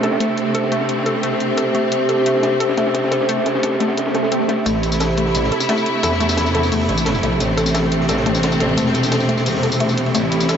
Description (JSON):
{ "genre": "dark technical drum and bass", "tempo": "175 BPM", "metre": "4/4", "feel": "straight", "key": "A minor", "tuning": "A4 = 440 Hz", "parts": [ { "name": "clear studio string section", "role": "sustained chords", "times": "0.0-10.6 s", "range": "C3 to E4", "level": "-21 LUFS", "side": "equal", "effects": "vintage 12-bit sampler grit" }, { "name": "analog pluck", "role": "arpeggios", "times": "0.0-10.6 s", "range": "A3 to A4", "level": "-23 LUFS", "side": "left 2 dB", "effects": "chorus, diffuse ambient delay" }, { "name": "crunchy breakbeat drum kit", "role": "drums", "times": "0.0-10.6 s", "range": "hi-hat, ride cymbal, snare drum", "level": "-27 LUFS", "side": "equal", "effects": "high-pass filter on cymbals, low-pass filter on cymbals, high-pass filter on hats, low-pass filter on hats, high-pass filter on snare, low-pass filter on snare, high-pass filter on room, low-pass filter on room" }, { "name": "electronic hi-hat and tambourine", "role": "drums", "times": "0.0-10.6 s", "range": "none", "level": "-27 LUFS", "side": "left 2 dB", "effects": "none" }, { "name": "warbly tape-like pad", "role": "texture", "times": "0.0-10.6 s", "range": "A3 to E5", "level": "-22 LUFS", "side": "right 1 dB", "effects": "chorus, built-in reverb" }, { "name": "swell and riser", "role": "sound effects", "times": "4.1-10.6 s", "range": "none", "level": "-29 LUFS", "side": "right 3 dB", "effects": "none" }, { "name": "metallic wobble bass", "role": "bass", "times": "4.7-10.6 s", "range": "E1 to E2", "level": "-20 LUFS", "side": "equal", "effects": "chorus, overdrive" } ], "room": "wet huge ambient reverb, RT60 7.6 s", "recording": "dreamy mix soaked in reverb, high-pass filter, nothing above 7.8 kHz", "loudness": "-16 LUFS", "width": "side -8 dB against mid", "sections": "0.0-4.7 A section; 4.7-10.6 B section", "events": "swell 4.1-4.7; build-up 4.7-10.6; filter sweep on synth arpeggio sound 4.7-10.6", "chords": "0.0 Am", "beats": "0.20 | 0.55 0.89 1.23 1.57 | 1.92 2.26 2.60 2.95 | 3.29 3.63 3.98 4.32 | 4.66 5.00 5.35 5.69 | 6.03 6.38 6.72 7.06 | 7.40 7.75 8.09 8.43 | 8.78 9.12 9.46 9.80 | 10.15 10.49" }